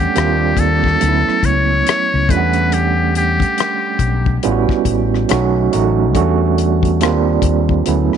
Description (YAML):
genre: R&B, neo-soul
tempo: 70 BPM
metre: 4/4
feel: swing 61% on 16ths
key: E dorian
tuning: A4 = 440 Hz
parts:
  - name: trumpet with metal mute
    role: melody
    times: 0.0-4.4 s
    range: G4 to C#5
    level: -18 LUFS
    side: left 2 dB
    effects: tape echo
  - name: overdriven tine electric piano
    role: accompaniment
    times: 0.0-8.2 s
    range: F#3 to F#5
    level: -17 LUFS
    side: right 11 dB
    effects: fast tremolo
  - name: fretless electric bass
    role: bass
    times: 0.0-8.2 s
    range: A1 to E2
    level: -17 LUFS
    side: left 2 dB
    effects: none
  - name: damped 70s drum kit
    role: drums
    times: 0.0-8.2 s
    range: hi-hat, kick drum, rim click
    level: -19 LUFS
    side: left 5 dB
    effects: none
room: studio reverb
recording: 1960s-style stereo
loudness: -13 LUFS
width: side -8 dB against mid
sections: 0.0-8.2 A section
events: none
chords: 0.1 D#maj9; 1.0 Dmaj9; 2.3 Em11; 4.4 A9; 5.3 B7; 6.1 Em11; 7.0 D#maj9